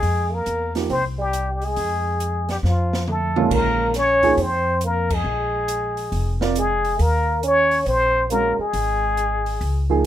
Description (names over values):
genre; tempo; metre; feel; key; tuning
jazz, small-group swing and bop; 138 BPM; 4/4; swing 66% on 8ths; F minor, Bb minor from 3.5 s; A4 = 440 Hz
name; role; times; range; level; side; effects
trumpet with plunger mute; melody; 0.0-9.9 s; F4 to Db5; -21 LUFS; left 2 dB; none
trombone with cup mute; second line; 0.0-10.1 s; F3 to Db4; -28 LUFS; right 3 dB; none
upright bass; bass; 0.0-10.1 s; F1 to F2; -24 LUFS; equal; none
open jazz drum kit; drums; 0.0-9.7 s; crash cymbal, hi-hat, kick drum, snare drum, toms; -31 LUFS; right 2 dB; none
warm upright piano; accompaniment; 0.8-10.1 s; Bb2 to D5; -22 LUFS; right 7 dB; none
room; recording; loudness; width
light reverb; minimal, uncompressed stereo recording; -18 LUFS; side -11 dB against mid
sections
0.0-3.5 A section; 3.5-10.1 B section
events
drum fill 2.6-3.5; band accent 5.0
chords
0.0 Fmadd9; 2.6 F7; 3.5 Bbm7; 5.3 Bb7(no3); 7.0 Ebm7; 8.7 N.C.